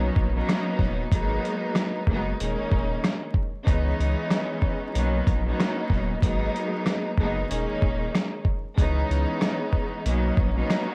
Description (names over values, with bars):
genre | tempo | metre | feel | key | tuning
hip hop, boom-bap hip-hop | 94 BPM | 4/4 | swing 61% on 16ths | G# minor | A4 = 441 Hz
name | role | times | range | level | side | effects
clear studio string section | accompaniment | 0.0-10.9 s | D#3 to D#4 | -30 LUFS | equal | high-pass filter, low-pass filter
soft dub sub bass | bass | 0.0-10.6 s | D#1 to C#2 | -29 LUFS | equal | tube saturation
dusty soul sampler-style drum kit | drums | 0.2-10.9 s | hi-hat, kick drum, rim click, snare drum | -27 LUFS | equal | overdrive
room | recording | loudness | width
digital ambience | worn, warbling old tape, cassette tape, vinyl crackle, warbly pitch drift | -25 LUFS | mono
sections
0.0-10.9 A section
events
none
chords
0.0 Bmaj9; 1.1 G#m7; 2.4 D#7sus4; 3.7 C#m9; 4.9 Bmaj9; 6.2 G#m7; 7.5 D#7sus4; 8.8 C#m9; 10.1 Bmaj9